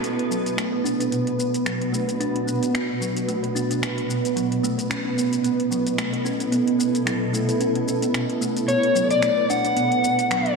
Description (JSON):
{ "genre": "organic downtempo", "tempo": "111 BPM", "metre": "4/4", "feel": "swing 56% on 16ths", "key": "B minor", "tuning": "A4 = 439 Hz", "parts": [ { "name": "granular cloud pad", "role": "sustained chords", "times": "0.0-10.6 s", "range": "B2 to B4", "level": "-24 LUFS", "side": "right 2 dB", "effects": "built-in reverb" }, { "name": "kalimba", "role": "arpeggios", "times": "0.0-10.6 s", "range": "F#3 to B4", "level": "-26 LUFS", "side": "right 1 dB", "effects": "low-pass filter, analog delay" }, { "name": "deep house drum kit", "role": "drums", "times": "0.0-10.6 s", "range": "finger snaps, hi-hat, shaker", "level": "-30 LUFS", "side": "left 1 dB", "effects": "none" }, { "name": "overdriven slide guitar", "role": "melody", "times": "8.7-10.5 s", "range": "C#5 to F#5", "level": "-20 LUFS", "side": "left 3 dB", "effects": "vintage 12-bit sampler grit, analog delay" } ], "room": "wet plate reverb, RT60 2.9 s", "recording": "dreamy mix soaked in reverb", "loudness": "-20 LUFS", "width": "side -4 dB against mid", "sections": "0.0-10.6 A section", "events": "filter sweep on ambient pad 0.0-10.6", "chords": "0.0 Bm; 4.4 Aadd9/B; 8.7 Bm" }